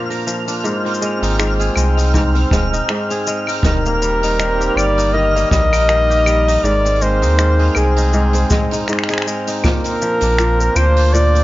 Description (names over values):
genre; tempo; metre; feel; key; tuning
folktronica; 80 BPM; 4/4; swing 56% on 16ths; Ab lydian; A4 = 439 Hz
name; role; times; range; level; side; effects
hand-pumped harmonium; sustained chords; 0.0-11.4 s; G3 to C5; -24 LUFS; equal; none
kora; arpeggios; 0.0-11.4 s; Ab2 to Bb4; -21 LUFS; equal; tape echo
twinkling granular texture; texture; 0.0-11.4 s; F6; -28 LUFS; right 2 dB; built-in reverb
jazz brush drum kit; drums; 0.1-11.4 s; claves, finger snaps, hi-hat, shaker; -25 LUFS; equal; none
warm sub bass; bass; 1.2-11.4 s; Eb1 to Eb2; -16 LUFS; equal; none
kick drum; drums; 2.1-9.8 s; none; -18 LUFS; equal; none
warm flugelhorn; melody; 3.6-11.4 s; Ab4 to Eb5; -17 LUFS; equal; none
room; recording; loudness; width
studio reverb; nothing above 7.5 kHz; -13 LUFS; side -16 dB against mid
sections
0.0-11.4 A section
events
none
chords
0.0 Bbadd9; 0.6 Ab; 3.6 Eb; 6.6 Ab; 9.6 Bbadd9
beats
| 0.64 1.39 2.13 2.88 | 3.63 4.38 5.13 5.88 | 6.63 7.38 8.13 8.88 | 9.63 10.38 11.13